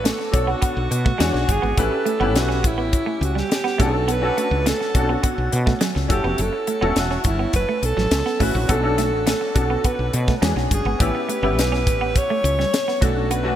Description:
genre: polished 1980s jazz-funk pop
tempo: 104 BPM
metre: 4/4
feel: straight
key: B minor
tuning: A4 = 440 Hz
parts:
  - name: warm alto saxophone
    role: melody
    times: 0.0-13.6 s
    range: E4 to C#5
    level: -24 LUFS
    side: right 2 dB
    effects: none
  - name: clear grand piano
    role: accompaniment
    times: 0.0-13.6 s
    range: A3 to C#5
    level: -25 LUFS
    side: left 3 dB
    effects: ensemble chorus
  - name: semi-hollow electric guitar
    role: riff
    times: 0.0-13.5 s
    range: F#3 to C#4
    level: -28 LUFS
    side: right 5 dB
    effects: wide subtle chorus
  - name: woody fretless electric bass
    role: bass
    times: 0.0-13.5 s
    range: E1 to B2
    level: -23 LUFS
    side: equal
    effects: none
  - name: tight funk drum kit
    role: drums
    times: 0.1-13.4 s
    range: hi-hat, kick drum, snare drum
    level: -22 LUFS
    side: equal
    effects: none
room: moderate lush hall reverb, RT60 2.0 s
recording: bright 1980s-style digital production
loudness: -18 LUFS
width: side -11 dB against mid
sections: 0.0-13.6 A section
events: none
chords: 0.0 Bm9; 1.2 E13; 1.8 A9; 3.8 Bm9; 6.1 F#m7; 8.7 Bm9; 10.4 E13; 11.0 A9; 13.0 Bm9

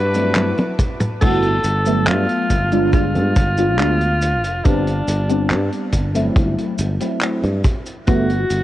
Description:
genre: vaporwave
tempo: 70 BPM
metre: 4/4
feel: straight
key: G major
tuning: A4 = 441 Hz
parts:
  - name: bright alto saxophone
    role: melody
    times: 0.0-8.6 s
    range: D4 to B4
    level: -22 LUFS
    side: equal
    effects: tape echo
  - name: rich symphonic string section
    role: sustained chords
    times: 0.0-1.2 s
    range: F#4 to D6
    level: -34 LUFS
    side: equal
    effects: none
  - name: sustaining fretless electric bass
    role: bass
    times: 0.0-8.6 s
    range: F1 to G2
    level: -20 LUFS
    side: equal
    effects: tube saturation
  - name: FM electric piano with soft pad layer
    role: accompaniment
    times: 0.1-8.3 s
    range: F#3 to E5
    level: -21 LUFS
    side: equal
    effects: phaser, tremolo, analog chorus, analog delay
  - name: vintage drum kit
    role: drums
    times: 0.1-8.6 s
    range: cabasa, crash cymbal, handclaps, hi-hat, toms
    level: -26 LUFS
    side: equal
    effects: none
  - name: kick drum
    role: drums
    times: 0.8-8.3 s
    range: none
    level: -17 LUFS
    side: equal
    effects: none
room: light reverb, small room ambience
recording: worn, warbling old tape, cassette tape, warbly pitch drift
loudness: -15 LUFS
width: side -14 dB against mid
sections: 0.0-1.2 A section; 1.2-8.6 B section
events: drum fill 0.4-1.2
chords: 0.0 D9/G; 1.2 Gmaj13; 2.5 Fm69; 4.6 Am11/G; 6.4 Am6; 8.1 Gmaj13

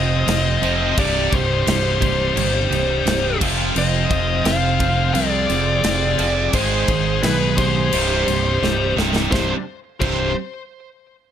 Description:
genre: heavy metal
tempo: 86 BPM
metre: 4/4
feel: straight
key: C minor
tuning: A4 = 440 Hz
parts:
  - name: bluesy overdriven lead guitar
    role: melody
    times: 0.0-10.3 s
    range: B4 to F5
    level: -22 LUFS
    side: equal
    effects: distortion, ping-pong delay
  - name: high-gain lead guitar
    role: second line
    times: 0.0-10.3 s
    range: G4 to C5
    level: -30 LUFS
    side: right 1 dB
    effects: distortion
  - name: pipe organ, strings celeste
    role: sustained chords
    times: 0.0-9.6 s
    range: C3 to G5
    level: -32 LUFS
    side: left 1 dB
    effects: none
  - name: high-gain distorted guitar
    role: riff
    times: 0.0-10.3 s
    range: C2 to Ab3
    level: -24 LUFS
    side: right 10 dB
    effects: distortion
  - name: scooped high-gain guitar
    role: riff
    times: 0.0-10.3 s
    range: C2 to Ab4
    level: -24 LUFS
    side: left 13 dB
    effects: distortion
  - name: growling fingered electric bass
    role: bass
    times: 0.0-10.3 s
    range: C1 to C2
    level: -23 LUFS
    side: equal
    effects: overdrive
  - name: tight metal drum kit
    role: drums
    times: 0.3-10.2 s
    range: crash cymbal, kick drum, snare drum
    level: -24 LUFS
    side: left 1 dB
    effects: none
room: light reverb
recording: none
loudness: -16 LUFS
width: side -9 dB against mid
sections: 0.0-9.3 A section; 9.3-11.3 B section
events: drum fill 8.6-9.3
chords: 0.0 F5; 1.0 Cm; 3.4 Fm; 6.5 Ab; 7.9 Cm; 9.3 C5

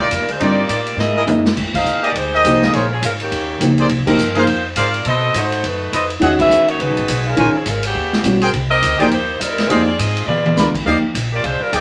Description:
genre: jazz, big band swing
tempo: 207 BPM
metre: 4/4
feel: swing 60% on 8ths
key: Eb major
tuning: A4 = 440 Hz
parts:
  - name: bright saxophone section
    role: melody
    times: 0.0-11.8 s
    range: Db3 to F5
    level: -21 LUFS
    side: equal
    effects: none
  - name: clear trumpet section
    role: stabs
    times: 0.0-11.8 s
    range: Eb4 to Cb6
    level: -20 LUFS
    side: equal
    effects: none
  - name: upright bass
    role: bass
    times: 0.0-11.8 s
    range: F1 to B2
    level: -26 LUFS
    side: equal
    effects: none
  - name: swinging big-band drum kit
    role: drums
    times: 0.1-11.8 s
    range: crash cymbal, hi-hat, kick drum, ride cymbal, snare drum, toms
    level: -25 LUFS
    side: equal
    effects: none
  - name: dark baby grand piano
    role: accompaniment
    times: 0.4-11.0 s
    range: D3 to Eb5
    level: -19 LUFS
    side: equal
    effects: none
room: wet studio ambience, RT60 0.5 s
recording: none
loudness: -16 LUFS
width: mono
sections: 0.0-1.6 A section; 1.6-10.9 B section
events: drum fill 1.0-1.6, 10.3; band accent 1.7, 4.0, 6.4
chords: 0.0 Ebmaj9; 1.0 Gb13; 1.6 Fm11; 2.7 Bbm9; 3.3 Eb7; 3.9 Ab69; 5.1 B7b9; 6.2 Emaj9; 7.4 Bbm9; 8.0 Eb7alt; 8.5 Abmaj9 (rootless); 9.7 Fm7; 10.3 Bb7b9; 10.9 Ebmaj9

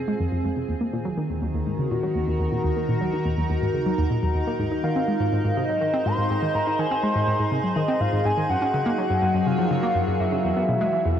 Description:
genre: ambient, sequencer-driven space music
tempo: 123 BPM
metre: 4/4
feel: straight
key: unclear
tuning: A4 = 442 Hz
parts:
  - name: evolving wavetable pad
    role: sustained chords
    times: 0.0-11.2 s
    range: Eb3 to Bb5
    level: -26 LUFS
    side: left 1 dB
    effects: chorus, built-in reverb, phaser, shimmer reverb
  - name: analog pluck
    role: riff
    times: 0.1-11.2 s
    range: Eb2 to Eb4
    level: -25 LUFS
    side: equal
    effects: chorus, tape echo
  - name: soft octave-layered synth lead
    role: melody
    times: 4.8-11.2 s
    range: Eb5 to C6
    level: -24 LUFS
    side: equal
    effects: chorus, shimmer reverb, tape echo
room: wet huge ambient reverb, RT60 9.2 s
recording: worn, warbling old tape, cassette tape, warbly pitch drift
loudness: -21 LUFS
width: side -9 dB against mid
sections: 0.0-11.2 A section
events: filter sweep on synth arpeggio sound 0.0-11.2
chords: 0.0 Fm; 0.7 Ebm; 4.6 Ab; 8.5 Gbadd9; 10.4 E

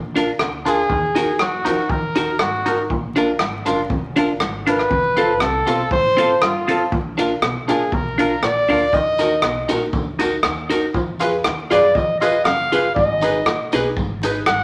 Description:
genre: ska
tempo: 119 BPM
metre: 4/4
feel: straight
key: Eb harmonic minor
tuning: A4 = 439 Hz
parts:
  - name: clean electric guitar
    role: riff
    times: 0.0-14.6 s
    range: F2 to Gb3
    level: -31 LUFS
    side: equal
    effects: tape echo
  - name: upright bass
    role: bass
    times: 0.0-14.6 s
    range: F1 to Gb2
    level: -35 LUFS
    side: equal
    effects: none
  - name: clean electric guitar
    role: accompaniment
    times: 0.2-14.4 s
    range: C4 to Cb5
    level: -24 LUFS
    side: equal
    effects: phaser
  - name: clear upright piano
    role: stabs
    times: 0.2-14.4 s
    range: C4 to Cb5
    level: -26 LUFS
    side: equal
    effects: none
  - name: swinging big-band drum kit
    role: drums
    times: 0.2-14.6 s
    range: hi-hat, kick drum, rim click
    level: -26 LUFS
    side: equal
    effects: none
  - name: clear trumpet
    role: melody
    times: 0.7-14.6 s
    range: F4 to Gb5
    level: -21 LUFS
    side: equal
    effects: none
  - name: tambourine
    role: percussion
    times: 9.2-14.3 s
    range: none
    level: -41 LUFS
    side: equal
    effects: none
room: wet small room reverb, RT60 0.5 s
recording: vinyl crackle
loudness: -19 LUFS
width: mono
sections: 0.0-14.6 A section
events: trumpet solo 0.0-14.6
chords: 0.0 Bb; 0.9 Ebm; 2.9 Bb; 4.9 F; 6.9 Bb; 8.9 Ebm; 10.9 Fdim; 13.0 Abm

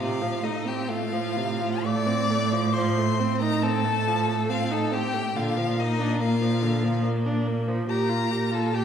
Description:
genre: classical, slow romantic movement for string quartet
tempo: 61-72 BPM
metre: 3/4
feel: rubato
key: Bb major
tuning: A4 = 438 Hz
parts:
  - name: rich violin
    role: melody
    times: 0.0-8.8 s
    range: Eb5 to D6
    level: -30 LUFS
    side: left 7 dB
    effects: none
  - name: rich violin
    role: second line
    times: 0.0-8.8 s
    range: Eb4 to D5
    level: -31 LUFS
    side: left 2 dB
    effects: none
  - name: rich viola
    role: accompaniment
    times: 0.0-8.8 s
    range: C3 to G4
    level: -28 LUFS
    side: right 1 dB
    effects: none
  - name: clear cello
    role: bass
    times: 0.0-8.8 s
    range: A2 to Bb2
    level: -26 LUFS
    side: right 3 dB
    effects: none
room: wet scoring stage reverb, RT60 1.6 s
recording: heard from further back in the room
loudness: -22 LUFS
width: side -8 dB against mid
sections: 0.0-8.8 A section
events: none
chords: 0.0 F/A; 2.7 F7/A; 5.4 Bb; 7.9 Gm7/Bb

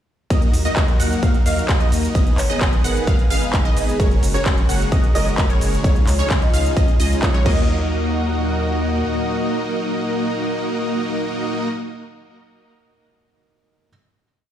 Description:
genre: EDM, festival progressive house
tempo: 130 BPM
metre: 4/4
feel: straight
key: Eb minor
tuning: A4 = 440 Hz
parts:
  - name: lush unison pad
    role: sustained chords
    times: 0.3-11.7 s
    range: Bb2 to Ab4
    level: -30 LUFS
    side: equal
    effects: chorus, sidechain pumping
  - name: wide unison pluck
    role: arpeggios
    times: 0.3-11.7 s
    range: Db5 to Gb5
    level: -28 LUFS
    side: right 1 dB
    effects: phaser, sidechain pumping, tape echo
  - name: dense compressed supersaw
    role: riff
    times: 0.3-11.7 s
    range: Bb3 to Gb5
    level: -23 LUFS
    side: equal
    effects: sidechain pumping, tape echo
  - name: saturated sub bass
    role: bass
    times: 0.3-9.0 s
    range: Gb1 to Eb2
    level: -22 LUFS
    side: equal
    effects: sidechain pumping
  - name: big-room dance drum kit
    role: drums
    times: 0.3-7.6 s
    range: crash cymbal, handclaps, hi-hat, ride cymbal, shaker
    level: -27 LUFS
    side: equal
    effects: small room ambience
  - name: electronic kick drum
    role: drums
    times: 0.3-7.5 s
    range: none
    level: -17 LUFS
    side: equal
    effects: small room ambience
  - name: vibraphone with medium mallets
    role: melody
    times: 1.5-6.9 s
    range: Ab4 to Eb5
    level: -28 LUFS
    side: left 1 dB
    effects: tape echo
  - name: felt-muted upright piano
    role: accompaniment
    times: 4.0-13.9 s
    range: Db3 to Eb5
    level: -31 LUFS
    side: right 2 dB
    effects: sidechain pumping, tape echo
room: digital ambience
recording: played on a big sound system in a bare room, stone room reverb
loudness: -16 LUFS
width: side -10 dB against mid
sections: 0.3-7.7 drop; 7.7-11.4 final hit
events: drop 0.3-7.7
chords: 0.3 Ebm; 2.2 Abm; 4.0 Gbadd9; 5.8 Dbadd9; 7.5 Ebm

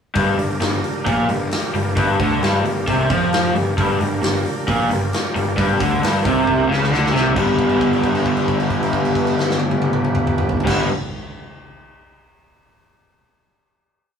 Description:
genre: blues rock power trio and southern rock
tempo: 134 BPM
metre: 4/4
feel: straight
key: G minor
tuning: A4 = 439 Hz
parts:
  - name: raw garage guitar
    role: riff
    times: 0.1-10.9 s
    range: G2 to D4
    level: -18 LUFS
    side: equal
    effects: overdrive
  - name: overdriven tonewheel organ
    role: sustained chords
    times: 0.2-10.9 s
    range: D4 to B4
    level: -28 LUFS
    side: right 2 dB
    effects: chorus vibrato, slow rotary speaker
  - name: fuzz picked electric bass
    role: bass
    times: 0.2-10.9 s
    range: G1 to F2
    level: -25 LUFS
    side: equal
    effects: overdrive
  - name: big rock drum kit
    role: drums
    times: 0.2-10.8 s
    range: crash cymbal, hi-hat, kick drum, snare drum, toms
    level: -23 LUFS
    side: equal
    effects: none
room: moderate studio reverb, RT60 0.7 s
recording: band playing live in one room, small room ambience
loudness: -16 LUFS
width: side -7 dB against mid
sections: 0.2-7.4 riff; 7.4-10.9 final chord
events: drum fill 6.5-7.4; held note 7.4-10.7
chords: 0.2 Gm; 7.4 G

